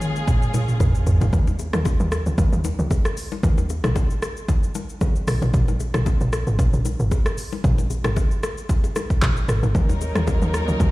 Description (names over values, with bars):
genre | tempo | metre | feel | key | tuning
amapiano | 114 BPM | 4/4 | swing 55% on 16ths | Eb minor | A4 = 440 Hz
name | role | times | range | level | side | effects
dark studio string section | sustained chords | 0.0-1.3, 9.7-10.9 s | Gb3 to Bb4 | -29 LUFS | equal | none
afro-pop drum kit | drums | 0.0-10.9 s | handclaps, hi-hat, kick drum, rim click, shaker, toms | -21 LUFS | equal | overdrive
congas and bongos | percussion | 0.3-10.9 s | none | -30 LUFS | left 4 dB | none
tight log drum bass | bass | 0.8-10.9 s | Ab1 to Eb2 | -21 LUFS | equal | none
room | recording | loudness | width
little or no reverb | played on a big sound system in a bare room, stone room reverb | -19 LUFS | side -19 dB against mid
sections
0.0-1.3 A section; 1.3-10.9 A section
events
drop 0.0-1.3, 1.3-10.9; drum fill 0.0-1.3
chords
0.0 Bbm7; 1.3 Eb5; 5.3 Absus2; 9.7 Ebm7